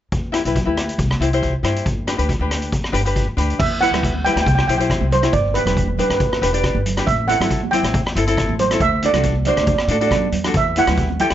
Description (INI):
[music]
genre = calypso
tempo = 138 BPM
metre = 4/4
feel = swing 53% on 16ths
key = G major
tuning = A4 = 441 Hz
[part]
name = upright bass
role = bass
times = 0.1-11.3 s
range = E1 to A2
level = -22 LUFS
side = equal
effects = none
[part]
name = street-band drum kit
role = drums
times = 0.1-11.3 s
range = crash cymbal, hi-hat, kick drum, rim click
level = -22 LUFS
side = equal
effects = none
[part]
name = tenor ukulele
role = accompaniment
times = 0.3-11.3 s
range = C4 to D5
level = -23 LUFS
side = left 4 dB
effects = none
[part]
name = steel pan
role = melody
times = 3.6-11.3 s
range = B4 to G5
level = -19 LUFS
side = right 3 dB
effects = none
[part]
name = congas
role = percussion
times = 3.8-11.3 s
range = none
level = -27 LUFS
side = right 6 dB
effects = none
[sound]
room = little or no reverb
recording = nothing above 7.8 kHz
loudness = -16 LUFS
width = side -11 dB against mid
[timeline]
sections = 0.1-3.6 A section; 3.6-11.3 B section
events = drum fill 10.0-10.5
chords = 0.1 Em; 1.0 C; 1.9 G; 3.6 Em; 4.5 Cmaj7; 5.3 G; 7.1 Am7; 8.8 D7; 10.5 Em